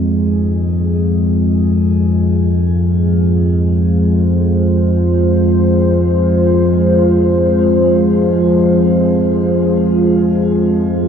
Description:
dark ambient drone; free time; A4 = 440 Hz
deep dark ambient pad; sustained chords; 0.0-11.1 s; Ab3 to C5; -14 LUFS; equal; chorus, built-in reverb, shimmer reverb
analog drone; drone; 0.0-11.1 s; F2 to F3; -14 LUFS; equal; chorus
wet huge ambient reverb, RT60 8.6 s; dark, warm production; -11 LUFS; side -8 dB against mid
0.0-11.1 A section
filter sweep on synth drone 0.0-11.1
0.0 Ab

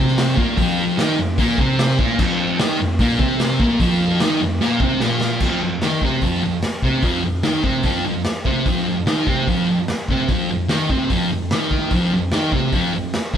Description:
garage rock duo or trio; 148 BPM; 4/4; straight; A4 = 441 Hz
thick fuzz guitar; riff; 0.0-13.4 s; F2 to Eb4; -18 LUFS; equal; distortion
raw garage drum kit; drums; 0.1-13.4 s; crash cymbal, hi-hat, kick drum, snare drum; -21 LUFS; equal
moderate stone room reverb, RT60 1.2 s; band playing live in one room; -16 LUFS; side -9 dB against mid
0.0-5.4 A section; 5.4-13.4 B section
drum fill 4.6-5.4
0.0 F5

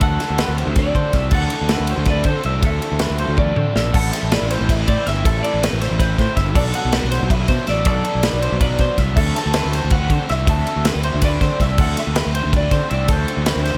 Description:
math rock and midwest emo; 321 BPM (eighths); 7/8; straight; A4 = 440 Hz
electric guitar through a small old amp; melody; 0.0-13.8 s; C5 to A5; -28 LUFS; equal; analog chorus, digital delay
electric guitar through a small old amp; accompaniment; 0.0-3.9 s; A2 to A4; -34 LUFS; equal
twelve-string electric guitar; arpeggios; 0.0-13.8 s; A4 to E5; -28 LUFS; equal
raw garage guitar; riff; 0.0-13.8 s; A2 to A4; -30 LUFS; equal; overdrive
fuzz fingered electric bass; bass; 0.0-13.8 s; G1 to D3; -23 LUFS; equal; overdrive
modern studio drum kit; drums; 0.0-13.7 s; crash cymbal, kick drum, ride cymbal, snare drum, toms; -22 LUFS; equal
little or no reverb; -18 LUFS; mono
0.0-3.9 A section; 3.9-13.8 B section
drum fill 3.4-3.9
0.0 D9; 3.9 Am7; 6.6 Bm7; 9.2 D9

